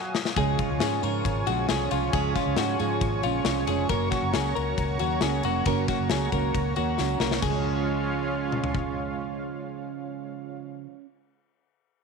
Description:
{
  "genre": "jangly indie pop",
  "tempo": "136 BPM",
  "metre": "4/4",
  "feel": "straight",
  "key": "Db major",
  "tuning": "A4 = 444 Hz",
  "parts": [
    { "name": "warm analog pad", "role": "sustained chords", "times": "0.0-10.6 s", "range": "Gb3 to Eb6", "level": "-32 LUFS", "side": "equal", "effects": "chorus, tremolo" },
    { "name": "big rock drum kit", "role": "drums", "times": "0.1-8.8 s", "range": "crash cymbal, kick drum, ride cymbal, snare drum, toms", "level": "-30 LUFS", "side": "left 5 dB", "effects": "none" },
    { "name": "fingerpicked plugged-in steel-string acoustic guitar", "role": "accompaniment", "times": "0.4-11.1 s", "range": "Gb2 to Db4", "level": "-30 LUFS", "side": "right 16 dB", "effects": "tube saturation" },
    { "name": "direct-recorded clean electric guitar", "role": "arpeggios", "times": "0.4-8.7 s", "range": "F4 to Bb4", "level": "-30 LUFS", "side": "left 14 dB", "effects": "tape echo" },
    { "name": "vintage muted fingered electric bass", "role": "bass", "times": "0.4-10.6 s", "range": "F1 to Ab2", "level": "-30 LUFS", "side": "right 1 dB", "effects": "none" },
    { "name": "tambourine", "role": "percussion", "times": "0.4-7.6 s", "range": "none", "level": "-45 LUFS", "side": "left 13 dB", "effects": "none" }
  ],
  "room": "light reverb, small room reverb",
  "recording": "1960s-style stereo with parts hard left and right",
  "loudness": "-24 LUFS",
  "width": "side -4 dB against mid",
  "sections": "0.4-7.4 A section; 7.4-10.9 B section",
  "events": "drum fill 0.0-0.4, 7.0-7.4; band accent 0.0-0.4",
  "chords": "0.4 Db; 3.9 Gb; 7.4 Db"
}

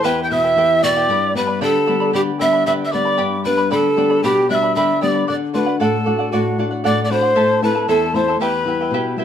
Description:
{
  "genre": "andean folk, Andean ensemble",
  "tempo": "115 BPM",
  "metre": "2/4",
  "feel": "straight",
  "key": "unclear",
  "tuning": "A4 = 438 Hz",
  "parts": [
    { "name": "bright pan flute", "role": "melody", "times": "0.0-9.1 s", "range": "F#4 to G5", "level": "-18 LUFS", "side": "right 2 dB", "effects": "none" },
    { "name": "quena", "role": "second line", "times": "0.0-9.1 s", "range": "F#5 to G6", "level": "-24 LUFS", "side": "left 4 dB", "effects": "none" },
    { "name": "charango", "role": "accompaniment", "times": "0.0-9.2 s", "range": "E4 to B5", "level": "-22 LUFS", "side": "right 2 dB", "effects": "none" },
    { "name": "flamenco guitar", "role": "accompaniment", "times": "0.0-9.2 s", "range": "E2 to F#4", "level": "-21 LUFS", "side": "left 4 dB", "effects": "none" }
  ],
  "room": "wet studio reverb, RT60 0.6 s",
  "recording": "dark, warm production",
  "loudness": "-15 LUFS",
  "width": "side -9 dB against mid",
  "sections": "0.0-1.1 A section; 1.1-9.2 A section",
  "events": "none",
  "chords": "0.0 Em; 1.1 G; 5.3 D; 7.4 Am; 8.4 Em"
}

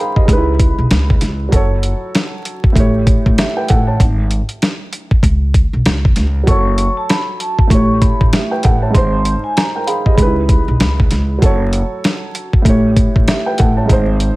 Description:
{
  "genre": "hip hop, boom-bap hip-hop",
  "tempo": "97 BPM",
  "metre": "4/4",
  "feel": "swing 60% on 16ths",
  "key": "F# minor",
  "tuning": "A4 = 440 Hz",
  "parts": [
    { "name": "vibraphone with medium hard mallets", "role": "melody", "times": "0.0-1.0, 6.5-10.9 s", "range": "G#5 to C#6", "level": "-22 LUFS", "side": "left 1 dB", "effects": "high-pass filter, low-pass filter, tape echo" },
    { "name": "dark upright piano", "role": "accompaniment", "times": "0.0-14.4 s", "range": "G#2 to A5", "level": "-18 LUFS", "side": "right 2 dB", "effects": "cassette tape, high-pass filter, low-pass filter" },
    { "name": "dusty soul sampler-style drum kit", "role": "drums", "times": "0.2-14.4 s", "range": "hi-hat, kick drum, snare drum", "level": "-13 LUFS", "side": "equal", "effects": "none" },
    { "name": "upright bass", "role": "bass", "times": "0.3-14.3 s", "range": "F#1 to C#2", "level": "-16 LUFS", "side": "equal", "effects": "none" }
  ],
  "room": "small room ambience",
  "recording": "vinyl crackle",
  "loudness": "-11 LUFS",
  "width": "side -20 dB against mid",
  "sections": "0.0-14.4 A section",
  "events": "none",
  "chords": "0.3 C#m7; 1.5 F#m; 2.8 A7; 4.0 N.C.; 6.5 F#m; 7.7 A7; 8.9 G#; 10.2 C#m7; 11.4 F#m; 12.7 A7"
}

